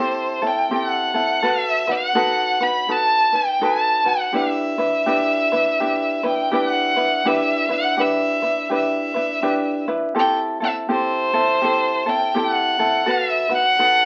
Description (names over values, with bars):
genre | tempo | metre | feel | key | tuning
hawaiian | 82 BPM | 4/4 | swing 61% on 8ths | E minor | A4 = 440 Hz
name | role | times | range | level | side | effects
bright violin | melody | 0.0-14.1 s | C5 to B5 | -22 LUFS | equal | none
ukulele | accompaniment | 0.0-14.1 s | C4 to B4 | -24 LUFS | equal | none
room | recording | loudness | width
wet studio reverb, RT60 0.6 s | very old 78 rpm record, vinyl crackle, nothing above 7.8 kHz | -20 LUFS | mono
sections
0.0-7.3 A section; 7.3-14.1 A section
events
none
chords
0.0 Am7; 1.4 B7; 4.3 Em7; 10.2 Am7; 13.1 B7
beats
0.71 | 1.44 2.17 2.89 3.62 | 4.35 5.08 5.81 6.53 | 7.26 7.99 8.72 9.45 | 10.17 10.90 11.63 12.36 | 13.09 13.81